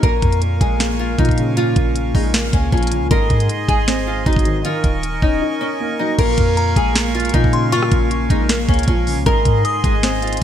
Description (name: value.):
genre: hip hop, trap.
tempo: 156 BPM.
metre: 4/4.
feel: half-time.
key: Bb minor.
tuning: A4 = 441 Hz.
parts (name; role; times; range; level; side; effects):
nylon-string guitar; melody; 0.0-10.4 s; Db4 to Bb4; -22 LUFS; left 2 dB; lush chorus.
dark concert grand piano; accompaniment; 0.0-10.4 s; Ab2 to Eb4; -22 LUFS; left 1 dB; ensemble chorus.
accordion; sustained chords; 0.0-10.4 s; Ab4 to Db6; -26 LUFS; right 4 dB; none.
clean 808-style bass; bass; 0.0-10.4 s; Eb1 to Bb2; -20 LUFS; equal; none.
trap drum kit; drums; 0.0-10.4 s; crash cymbal, hi-hat, kick drum, rim click, snare drum; -18 LUFS; equal; vintage 12-bit sampler grit.
delicate synth tine bell; second line; 6.6-10.4 s; Bb5 to Eb6; -26 LUFS; left 4 dB; chorus, ping-pong delay.
room: light reverb, small room reverb.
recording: bright 1980s-style digital production.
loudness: -14 LUFS.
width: side -10 dB against mid.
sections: 0.0-6.2 A section; 6.2-10.4 B section.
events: none.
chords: 0.0 Bbm7; 3.1 Ab7; 4.6 Ebm7; 6.2 Bbm7; 9.3 Ab.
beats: | 0.03 0.42 0.80 1.19 | 1.57 1.96 2.34 2.72 | 3.11 3.49 3.88 4.26 | 4.65 5.03 5.42 5.80 | 6.18 6.57 6.96 7.34 | 7.72 8.11 8.49 8.88 | 9.26 9.65 10.03 10.42.